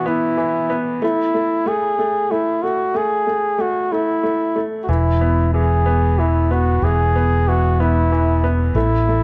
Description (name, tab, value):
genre	six-eight pop ballad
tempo	62 BPM (dotted quarters)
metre	6/8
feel	straight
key	unclear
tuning	A4 = 440 Hz
part	warm flugelhorn	melody	0.0-9.2 s	E4 to G#4	-22 LUFS	equal	none
part	bright upright piano	accompaniment	0.0-9.2 s	E3 to B3	-25 LUFS	equal	none
part	fretless electric bass	bass	4.9-9.2 s	E1 to A1	-19 LUFS	equal	subtle chorus
room	light reverb, small room ambience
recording	worn, warbling old tape, cassette tape, warbly pitch drift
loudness	-18 LUFS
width	mono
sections	0.0-9.2 A section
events	none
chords	0.0 E5; 1.0 N.C.; 4.9 E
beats	0.06 | 1.02 1.98 | 2.94 3.91 | 4.88 5.85 | 6.82 7.79 | 8.75